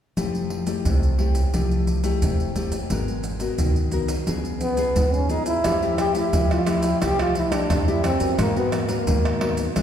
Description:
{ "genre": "samba and choro", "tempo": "88 BPM", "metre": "4/4", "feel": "straight", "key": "unclear", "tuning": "A4 = 444 Hz", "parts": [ { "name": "nylon-string guitar", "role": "accompaniment", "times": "0.2-9.8 s", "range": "Ab2 to Bb4", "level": "-26 LUFS", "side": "left 4 dB", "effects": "none" }, { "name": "upright bass", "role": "bass", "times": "0.2-9.8 s", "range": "F1 to Ab3", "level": "-26 LUFS", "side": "equal", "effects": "none" }, { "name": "maracas, surdo, pandeiro and tamborim", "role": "percussion", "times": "0.2-9.8 s", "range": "none", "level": "-25 LUFS", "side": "right 1 dB", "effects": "none" }, { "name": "breathy trombone", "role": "melody", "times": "4.6-9.7 s", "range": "Bb3 to G4", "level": "-23 LUFS", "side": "right 1 dB", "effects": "none" } ], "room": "wet concert hall reverb, RT60 2.5 s", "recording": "recorded in a church or concert hall", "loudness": "-20 LUFS", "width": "side -9 dB against mid", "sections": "0.2-5.6 A section; 5.6-9.8 B section", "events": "none", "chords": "0.2 Fmaj9; 2.9 Abm9; 4.3 Db7; 5.6 Fmaj9; 8.4 Abm9" }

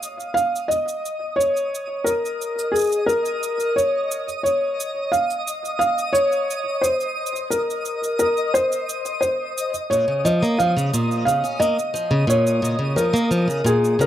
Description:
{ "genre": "folktronica", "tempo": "88 BPM", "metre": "4/4", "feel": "straight", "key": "Bb minor", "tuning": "A4 = 439 Hz", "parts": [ { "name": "felt-muted upright piano", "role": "melody", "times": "0.0-14.1 s", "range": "Ab4 to F5", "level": "-20 LUFS", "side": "equal", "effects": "vintage 12-bit sampler grit, tape echo" }, { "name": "cabasa", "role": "drums", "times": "0.0-14.1 s", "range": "none", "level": "-31 LUFS", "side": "right 4 dB", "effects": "none" }, { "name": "twinkling granular texture", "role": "texture", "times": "0.0-14.1 s", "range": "Eb5 to Eb6", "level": "-29 LUFS", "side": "equal", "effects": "built-in reverb" }, { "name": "picked plugged-in swing-style acoustic guitar", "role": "arpeggios", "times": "9.9-14.1 s", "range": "Bb2 to Db4", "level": "-20 LUFS", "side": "equal", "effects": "none" } ], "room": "light reverb", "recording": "dry, close 1970s-style studio recording", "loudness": "-19 LUFS", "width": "side -11 dB against mid", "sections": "0.0-14.1 A section", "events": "none", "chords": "0.0 N.C.; 9.9 Bbm" }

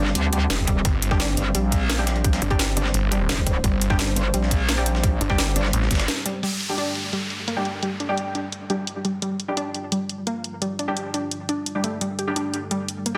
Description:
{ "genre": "dark technical drum and bass", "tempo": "172 BPM", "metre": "4/4", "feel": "straight", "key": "G minor", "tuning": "A4 = 440 Hz", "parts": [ { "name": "dark analog pad", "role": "sustained chords", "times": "0.0-13.2 s", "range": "G3 to C5", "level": "-35 LUFS", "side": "equal", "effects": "chorus, sidechain pumping" }, { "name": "warbly dusty pluck", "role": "arpeggios", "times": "0.0-13.1 s", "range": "G3 to G4", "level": "-32 LUFS", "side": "equal", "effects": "chorus, sidechain pumping, digital delay" }, { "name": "metallic wobble bass", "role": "bass", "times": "0.0-6.1 s", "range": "F1 to D2", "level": "-25 LUFS", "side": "equal", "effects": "chorus" }, { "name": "breakbeat sampler-style drum kit", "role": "drums", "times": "0.1-6.3 s", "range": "hi-hat, snare drum", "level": "-35 LUFS", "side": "equal", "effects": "none" }, { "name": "drum and bass drum kit", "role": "drums", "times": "0.2-13.1 s", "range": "crash cymbal, hi-hat, snare drum", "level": "-29 LUFS", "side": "equal", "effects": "overdrive, low-pass filter on hats, studio reverb, low-pass filter on snare, low-pass filter on cymbals" }, { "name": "orchestra-hit-like synth stab", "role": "stabs", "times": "0.3-13.2 s", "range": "G3 to G4", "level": "-32 LUFS", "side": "equal", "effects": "built-in reverb, digital delay" }, { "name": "electronic kick drum", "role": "drums", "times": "0.6-6.0 s", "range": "none", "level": "-25 LUFS", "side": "equal", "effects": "overdrive, studio reverb" }, { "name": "snarling distorted saw bass", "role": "bass", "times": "0.8-5.9 s", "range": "G1 to A1", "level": "-27 LUFS", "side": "equal", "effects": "distortion, tube saturation, sidechain pumping" }, { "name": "downlifter", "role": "sound effects", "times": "6.4-9.2 s", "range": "none", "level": "-33 LUFS", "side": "equal", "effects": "none" } ], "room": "light reverb", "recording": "dense, heavily limited modern master", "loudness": "-24 LUFS", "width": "mono", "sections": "0.0-6.4 A section; 6.4-13.2 B section", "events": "break 6.1-6.4; band accent 6.1; filter sweep on analog synth pad 6.4-13.2", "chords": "0.0 Gm; 6.4 G5" }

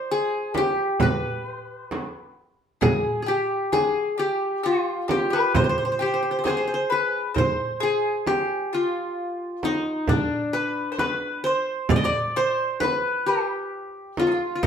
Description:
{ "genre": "Arabic maqam ensemble", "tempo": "132 BPM (eighths)", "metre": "10/8", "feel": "straight", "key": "C maqam nahawand", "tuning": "A4 = 441 Hz", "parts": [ { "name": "qanun", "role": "melody", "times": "0.0-14.7 s", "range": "D4 to Eb5", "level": "-24 LUFS", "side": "left 1 dB", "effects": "none" }, { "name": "mandolin", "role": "second line", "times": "0.0-14.7 s", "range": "D4 to Eb5", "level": "-29 LUFS", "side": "left 2 dB", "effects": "none" }, { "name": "frame drum", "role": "percussion", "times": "0.5-14.7 s", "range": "none", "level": "-26 LUFS", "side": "right 3 dB", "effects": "none" }, { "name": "darbuka", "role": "percussion", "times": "0.6-14.7 s", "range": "none", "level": "-30 LUFS", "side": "right 2 dB", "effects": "none" } ], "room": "wet studio reverb, RT60 0.8 s", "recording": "band playing live in one room", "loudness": "-21 LUFS", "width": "side -8 dB against mid", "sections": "0.0-7.4 A section; 7.4-14.7 B section", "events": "none", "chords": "none" }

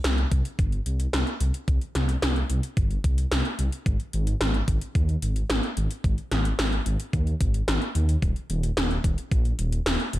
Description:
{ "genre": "synthwave", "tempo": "110 BPM", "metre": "4/4", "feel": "straight", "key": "unclear", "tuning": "A4 = 441 Hz", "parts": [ { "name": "dark detuned saw bass", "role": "bass", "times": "0.0-10.2 s", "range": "Eb1 to Eb2", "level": "-24 LUFS", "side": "equal", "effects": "none" }, { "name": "80s electronic pad drums", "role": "drums", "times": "0.0-10.2 s", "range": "hi-hat, snare drum", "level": "-28 LUFS", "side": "equal", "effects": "overdrive, gated reverb" }, { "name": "electronic kick drum", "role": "drums", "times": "0.3-9.4 s", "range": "none", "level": "-25 LUFS", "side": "equal", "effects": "none" } ], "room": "little or no reverb", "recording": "none", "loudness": "-23 LUFS", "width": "side -15 dB against mid", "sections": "0.0-10.2 A section", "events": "none", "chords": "none" }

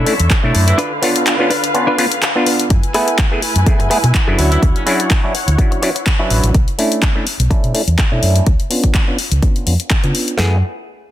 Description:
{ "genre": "filtered disco house", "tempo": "125 BPM", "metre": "4/4", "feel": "swing 54% on 16ths", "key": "F# minor", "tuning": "A4 = 440 Hz", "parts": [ { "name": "auto-wah clav", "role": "accompaniment", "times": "0.0-10.6 s", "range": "F#3 to G#5", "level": "-19 LUFS", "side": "right 1 dB", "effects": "phaser, sidechain pumping, low-pass filter" }, { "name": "muted studio string section", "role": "sustained chords", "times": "0.0-6.5 s", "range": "D3 to G#5", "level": "-22 LUFS", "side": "left 1 dB", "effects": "vintage 12-bit sampler grit, sidechain pumping, low-pass filter" }, { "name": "direct-recorded clean electric guitar", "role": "riff", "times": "0.0-6.5 s", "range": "D4 to C#5", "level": "-22 LUFS", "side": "equal", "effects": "sidechain pumping, low-pass filter" }, { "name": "fingered electric bass", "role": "bass", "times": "0.0-10.6 s", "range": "F#1 to C#3", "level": "-15 LUFS", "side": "equal", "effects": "tube saturation, sidechain pumping, low-pass filter" }, { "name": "house drum kit", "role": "drums", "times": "0.1-10.4 s", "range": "handclaps, hi-hat", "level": "-20 LUFS", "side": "left 2 dB", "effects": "sidechain pumping on hats" }, { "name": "house drum kit", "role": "drums", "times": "0.3-10.5 s", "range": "handclaps, kick drum, snare drum", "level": "-15 LUFS", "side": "equal", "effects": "none" }, { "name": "brilliant horn section", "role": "melody", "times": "0.7-0.8, 4.5-4.9 s", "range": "C#3 to E4", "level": "-24 LUFS", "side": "right 1 dB", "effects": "sidechain pumping, low-pass filter, tape echo" } ], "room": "light reverb, digital ambience", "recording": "dense, heavily limited modern master", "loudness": "-12 LUFS", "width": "side -12 dB against mid", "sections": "0.0-2.7 A section; 2.7-10.4 B section", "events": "filter sweep 0.0-2.7, 2.7-10.4", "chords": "0.0 Bm11; 0.8 C#7b9; 2.7 F#m11; 4.4 Dmaj9; 6.5 Bm11; 8.5 C#7b9; 10.4 F#m11" }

